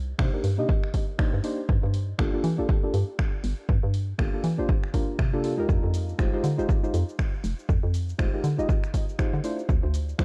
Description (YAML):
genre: deep house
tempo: 120 BPM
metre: 4/4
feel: swing 58% on 16ths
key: unclear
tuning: A4 = 440 Hz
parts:
  - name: hollow knocking FM bass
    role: bass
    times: 0.0-10.2 s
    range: D1 to E3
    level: -29 LUFS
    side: equal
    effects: sidechain pumping
  - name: deep mellow chord stab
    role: stabs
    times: 0.2-10.2 s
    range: Ab3 to Eb5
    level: -33 LUFS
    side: equal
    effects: chorus, sidechain pumping, analog delay
  - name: electronic kick drum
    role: drums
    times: 0.2-10.2 s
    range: none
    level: -27 LUFS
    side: equal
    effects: vintage 12-bit sampler grit
  - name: house drum kit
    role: drums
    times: 0.2-10.2 s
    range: cabasa, finger snaps, hi-hat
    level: -42 LUFS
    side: equal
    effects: vintage 12-bit sampler grit, tape echo
room: little or no reverb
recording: echo-heavy mix, cassette tape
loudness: -26 LUFS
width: mono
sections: 0.0-10.2 A section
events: none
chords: 0.0 Cm7; 1.7 Gm7; 5.7 Fm7; 9.4 Dm7